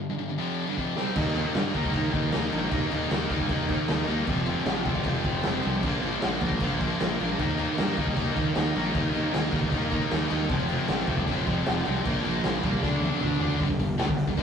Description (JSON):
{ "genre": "hard rock", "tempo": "154 BPM", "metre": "4/4", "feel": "straight", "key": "unclear", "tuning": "A4 = 437 Hz", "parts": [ { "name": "high-gain distorted guitar", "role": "riff", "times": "0.0-14.4 s", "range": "F2 to Eb4", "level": "-30 LUFS", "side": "left 6 dB", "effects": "distortion" }, { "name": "overdriven semi-hollow guitar", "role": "riff", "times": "0.0-14.4 s", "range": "F2 to Eb4", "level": "-32 LUFS", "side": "right 6 dB", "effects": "none" }, { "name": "raw garage drum kit", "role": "drums", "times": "0.8-14.4 s", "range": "crash cymbal, hi-hat, kick drum, snare drum, toms", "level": "-29 LUFS", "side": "equal", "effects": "none" }, { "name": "mellow tonewheel organ", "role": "sustained chords", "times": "1.2-14.4 s", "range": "G3 to G5", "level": "-40 LUFS", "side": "right 1 dB", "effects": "none" }, { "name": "high-gain distorted guitar", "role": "riff", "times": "1.2-14.4 s", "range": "F2 to Eb4", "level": "-37 LUFS", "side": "right 1 dB", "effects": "distortion" }, { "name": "fuzz fingered electric bass", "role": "bass", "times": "1.2-14.4 s", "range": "F1 to G2", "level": "-30 LUFS", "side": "equal", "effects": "overdrive" } ], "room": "moderate studio reverb, RT60 0.6 s", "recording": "rough rehearsal-room recording, tube saturation", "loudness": "-24 LUFS", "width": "side -7 dB against mid", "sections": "0.0-1.2 A section; 1.2-13.6 B section", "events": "break 0.0-1.2; drum fill 0.8-1.2, 12.8-13.6", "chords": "0.0 G5; 1.2 Eb; 4.3 F; 5.8 Bb; 7.4 Eb; 10.5 F; 12.0 Bb; 12.8 D; 13.6 G5" }